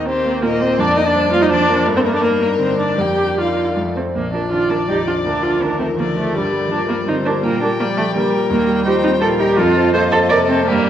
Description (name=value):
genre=quick classical-period movement for piano quintet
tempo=164 BPM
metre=3/4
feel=rubato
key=Bb major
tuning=A4 = 440 Hz
part: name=rich violin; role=melody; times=0.0-10.9 s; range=F4 to G5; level=-22 LUFS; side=left 6 dB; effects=none
part: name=rich cello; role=second line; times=0.0-10.9 s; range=D3 to Bb4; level=-24 LUFS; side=right 4 dB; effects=none
part: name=bright concert grand piano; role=accompaniment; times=0.0-10.9 s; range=Bb1 to C5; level=-21 LUFS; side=equal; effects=none
part: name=rich viola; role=accompaniment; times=0.0-10.9 s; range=G3 to D5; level=-18 LUFS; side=right 2 dB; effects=none
part: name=rich violin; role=second line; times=0.1-10.9 s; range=G4 to G5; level=-24 LUFS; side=left 4 dB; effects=none
room=wet recital hall reverb, RT60 1.5 s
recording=worn, warbling old tape, cassette tape, warbly pitch drift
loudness=-14 LUFS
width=side -10 dB against mid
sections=0.0-4.1 A section; 4.1-10.9 B section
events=none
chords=0.0 Eb; 0.8 Bb/F; 1.9 Gm; 3.0 Bb/F; 3.8 F; 4.1 Bb; 5.3 Bb/D; 6.3 Gm; 7.4 Gm/Bb; 8.5 Eb; 9.6 F7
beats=0.07 0.44 | 0.80 1.16 1.51 | 1.87 2.23 2.60 | 2.98 3.38 3.76 | 4.15 4.52 4.88 | 5.25 5.62 5.98 | 6.34 6.71 7.08 | 7.44 7.79 8.15 | 8.50 8.86 9.21 | 9.58 9.94 10.31 | 10.68